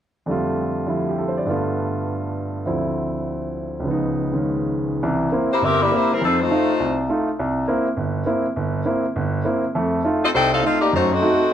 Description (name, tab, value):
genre	jazz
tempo	203 BPM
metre	4/4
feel	swing 59% on 8ths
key	unclear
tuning	A4 = 439 Hz
part	warm baby grand piano	accompaniment	0.3-11.4 s	G1 to D5	-20 LUFS	right 1 dB	none
part	clear saxophone section	melody	5.5-7.0, 10.2-11.5 s	F3 to G5	-18 LUFS	left 2 dB	none
room	moderate large studio reverb, RT60 1.1 s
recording	none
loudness	-19 LUFS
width	side -10 dB against mid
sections	0.3-5.0 A section; 5.0-11.5 B section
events	none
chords	0.3 F69; 1.5 G7; 2.7 Dm9; 3.8 Db9; 5.0 C7; 6.2 F7; 7.4 C7; 9.7 F7; 10.9 F#dim7